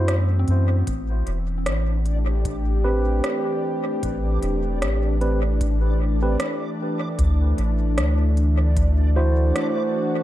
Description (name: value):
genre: ambient dub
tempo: 76 BPM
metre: 4/4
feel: swing 56% on 16ths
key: A dorian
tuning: A4 = 440 Hz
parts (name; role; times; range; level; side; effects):
- warm analog pad; sustained chords; 0.0-10.2 s; E3 to G4; -28 LUFS; equal; chorus
- soft synth bell; arpeggios; 0.0-4.0 s; B3 to F#4; -34 LUFS; right 1 dB; chorus, phaser, analog delay
- mellow tine electric piano; stabs; 0.0-10.2 s; C4 to C5; -28 LUFS; right 2 dB; dub echo
- soft dub sub bass; bass; 0.0-9.5 s; E1 to F#2; -20 LUFS; equal; none
- organic electronic drum kit; drums; 0.1-9.7 s; hi-hat, rim click; -31 LUFS; equal; overdrive, dub echo
- electronic kick drum; drums; 0.9-8.9 s; none; -28 LUFS; equal; none
- backwards swelling texture; texture; 1.9-10.2 s; D4 to D5; -33 LUFS; left 3 dB; built-in reverb
room: little or no reverb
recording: echo-heavy mix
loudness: -19 LUFS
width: side -14 dB against mid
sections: 0.9-10.2 A section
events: none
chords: 0.0 D7; 0.9 Am7; 7.2 D7